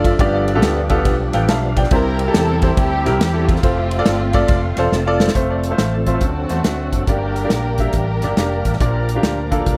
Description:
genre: uptempo gospel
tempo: 140 BPM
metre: 4/4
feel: swing 65% on 8ths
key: F major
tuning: A4 = 440 Hz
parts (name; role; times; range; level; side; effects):
- clear grand piano; accompaniment; 0.0-9.8 s; G2 to A5; -23 LUFS; equal; tape echo
- bright tonewheel organ; sustained chords; 0.0-9.8 s; F3 to A5; -28 LUFS; equal; slow rotary speaker, chorus vibrato
- fingered electric bass; bass; 0.0-9.8 s; E1 to E2; -23 LUFS; equal; none
- natural country drum kit; drums; 0.0-9.8 s; hi-hat, kick drum, ride cymbal, snare drum; -21 LUFS; equal; none
- warm studio string section; melody; 1.9-8.8 s; A3 to Bb4; -27 LUFS; equal; tape echo
- warm studio string section; sustained chords; 5.4-9.8 s; A4 to Bb5; -36 LUFS; equal; none
room: light reverb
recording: echo-heavy mix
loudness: -17 LUFS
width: mono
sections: 0.0-5.4 A section; 5.4-9.8 B section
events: grand piano fill 1.1-1.9; tonewheel organ fill 1.1-1.9, 4.1-5.4; drum fill 4.9-5.4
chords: 0.2 G7; 1.9 C; 3.6 F; 6.2 D7; 7.1 Gm; 8.8 Bb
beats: | 0.19 0.62 1.05 1.48 | 1.91 2.34 2.77 3.20 | 3.63 4.06 4.49 4.92 | 5.35 5.78 6.21 6.64 | 7.08 7.51 7.94 8.37 | 8.80 9.23 9.66

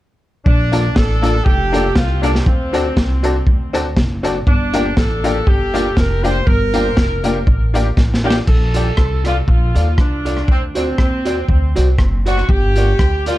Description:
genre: ska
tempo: 120 BPM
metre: 4/4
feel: swing 55% on 8ths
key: Bb major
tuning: A4 = 440 Hz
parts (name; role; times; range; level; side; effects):
- clear horn section; melody; 0.5-13.4 s; C4 to C5; -21 LUFS; equal; analog delay
- upright bass; bass; 0.5-13.4 s; F1 to Eb2; -18 LUFS; equal; none
- crunchy breakbeat drum kit; drums; 0.5-13.4 s; crash cymbal, hi-hat, kick drum, rim click, snare drum; -17 LUFS; equal; none
- vintage hollow-body jazz guitar; accompaniment; 0.7-13.4 s; F4 to D5; -24 LUFS; right 1 dB; analog delay
- honky-tonk upright piano; stabs; 0.7-8.3 s; Bb3 to A4; -23 LUFS; left 3 dB; analog delay
room: light reverb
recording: dark, warm production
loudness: -13 LUFS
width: side -16 dB against mid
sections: 0.5-8.5 A section; 8.5-13.4 B section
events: drum fill 8.0-8.5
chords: 0.5 Bbmaj7; 2.5 D7; 4.5 Gm7; 8.5 Bbmaj7; 10.5 D7; 12.5 Gm7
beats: | 0.46 0.96 1.46 1.96 | 2.46 2.96 3.46 3.96 | 4.46 4.97 5.47 5.97 | 6.47 6.97 7.47 7.97 | 8.47 8.98 9.48 9.98 | 10.48 10.98 11.48 11.99 | 12.49 12.99

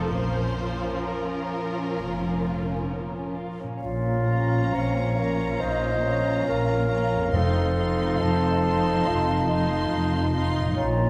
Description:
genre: classical, slow romantic movement for symphony orchestra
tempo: 62-71 BPM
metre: 4/4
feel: rubato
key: Bb minor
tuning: A4 = 440 Hz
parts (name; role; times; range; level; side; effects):
- rich studio violin section; melody; 0.0-10.8 s; Bb4 to C6; -38 LUFS; equal; none
- dark studio violin section; second line; 0.0-10.8 s; Bb3 to Bb4; -38 LUFS; equal; none
- warm studio viola section; accompaniment; 0.0-10.8 s; F3 to Eb4; -36 LUFS; equal; none
- concert harp; arpeggios; 0.0-11.1 s; F2 to Eb5; -37 LUFS; equal; none
- warm studio cello section; bass; 0.0-11.1 s; F2 to F4; -34 LUFS; equal; none
- dark studio double bass section; bass; 0.1-11.1 s; F1 to Bb1; -31 LUFS; equal; none
- concert flute; second line; 3.8-11.1 s; Eb5 to Bb5; -34 LUFS; equal; none
- mellow clarinet; second line; 3.8-11.1 s; F4 to Db5; -32 LUFS; equal; none
- dark bassoon; accompaniment; 3.8-11.1 s; Bb3 to F4; -33 LUFS; equal; none
- mellow French horn section; sustained chords; 3.8-11.1 s; F3 to Eb4; -33 LUFS; equal; none
- timpani; percussion; 7.3-8.6 s; F2; -31 LUFS; equal; none
room: wet stone room reverb, RT60 1.1 s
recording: none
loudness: -25 LUFS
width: mono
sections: 0.0-3.8 A section; 3.8-11.1 B section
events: none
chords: 0.1 Bbm; 7.3 F7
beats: | 0.11 1.05 1.99 2.91 | 3.82 4.75 5.61 6.47 | 7.33 8.21 9.07 9.91 | 10.77

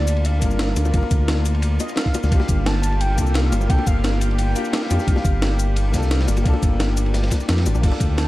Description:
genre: liquid drum and bass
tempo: 174 BPM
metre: 4/4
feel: straight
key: unclear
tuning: A4 = 440 Hz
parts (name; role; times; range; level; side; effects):
- warm velvety synth lead; melody; 0.0-8.3 s; D5 to A5; -31 LUFS; right 1 dB; chorus, dub echo
- clear grand piano; accompaniment; 0.0-8.3 s; Bb3 to Bb4; -28 LUFS; left 2 dB; dub echo
- lush unison pad; sustained chords; 0.0-8.3 s; Bb3 to A5; -30 LUFS; equal; chorus
- smooth synth bass; bass; 0.0-8.3 s; G1 to F2; -20 LUFS; equal; none
- breakbeat sampler-style drum kit; drums; 0.1-8.2 s; crash cymbal, hi-hat, shaker, snare drum; -26 LUFS; equal; studio reverb
- crunchy breakbeat drum kit; drums; 0.1-8.3 s; ride cymbal, snare drum; -33 LUFS; equal; high-pass filter on cymbals, studio reverb, high-pass filter on snare, high-pass filter on room
- electronic kick drum; drums; 0.4-8.1 s; none; -19 LUFS; equal; studio reverb
- bongos; percussion; 0.8-8.0 s; none; -30 LUFS; left 4 dB; none
room: small room reverb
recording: dark, warm production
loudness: -17 LUFS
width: side -17 dB against mid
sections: 0.0-8.3 A section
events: kick drops out 7.5-7.8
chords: 0.0 Gm9; 2.3 C7sus4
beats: 0.25 0.59 | 0.94 1.28 1.63 1.97 | 2.32 2.66 3.01 3.35 | 3.70 4.04 4.39 4.73 | 5.08 5.42 5.77 6.11 | 6.46 6.80 7.15 7.49 | 7.84 8.18

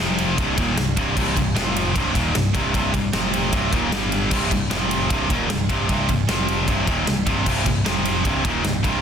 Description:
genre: heavy metal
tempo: 152 BPM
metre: 4/4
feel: straight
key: C minor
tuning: A4 = 444 Hz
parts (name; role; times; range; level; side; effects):
- scooped high-gain guitar; riff; 0.0-9.0 s; C2 to G3; -23 LUFS; left 7 dB; distortion
- scooped high-gain guitar; riff; 0.0-9.0 s; C2 to G3; -24 LUFS; right 11 dB; distortion
- modern bright picked electric bass; bass; 0.0-9.0 s; C1 to G1; -28 LUFS; equal; none
- big rock drum kit; drums; 0.2-8.9 s; crash cymbal, kick drum, ride cymbal, snare drum; -24 LUFS; equal; soft clipping on snare
room: little or no reverb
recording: dense, heavily limited modern master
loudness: -18 LUFS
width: side -8 dB against mid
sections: 0.0-9.0 A section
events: none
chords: 0.0 F5; 0.4 Cm; 1.6 F5; 1.9 Cm; 3.1 F5; 3.5 Cm; 3.9 G5; 4.3 C5; 4.7 F5; 5.1 Cm; 6.3 F5; 6.7 Cm; 7.9 F5; 8.3 Cm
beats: 0.38 0.77 | 1.16 1.56 1.95 2.34 | 2.73 3.13 3.52 3.92 | 4.31 4.70 5.10 5.49 | 5.89 6.28 6.67 7.07 | 7.46 7.86 8.25 8.65

